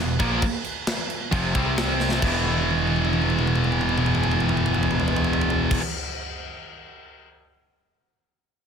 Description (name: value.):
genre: heavy metal.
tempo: 134 BPM.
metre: 4/4.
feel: straight.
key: E phrygian.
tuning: A4 = 442 Hz.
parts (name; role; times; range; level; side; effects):
distorted electric guitar; riff; 0.0-5.8 s; E2 to C4; -27 LUFS; left 1 dB; distortion.
heavy high-gain guitar; riff; 0.0-5.8 s; E2 to C4; -26 LUFS; right 9 dB; distortion.
scooped high-gain guitar; riff; 0.0-5.8 s; E2 to C4; -27 LUFS; left 10 dB; distortion.
growling picked electric bass; bass; 0.0-5.8 s; E1 to C2; -27 LUFS; equal; overdrive.
tight metal drum kit; drums; 0.2-7.3 s; crash cymbal, kick drum, snare drum, toms; -27 LUFS; right 1 dB; soft clipping on kick.
room: small room ambience.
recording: dense, heavily limited modern master.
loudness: -20 LUFS.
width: side -7 dB against mid.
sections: 0.0-2.2 A section; 2.2-5.8 B section.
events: drum fill 2.0, 2.4-5.7.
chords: 0.0 E5; 1.6 C5; 2.2 E5.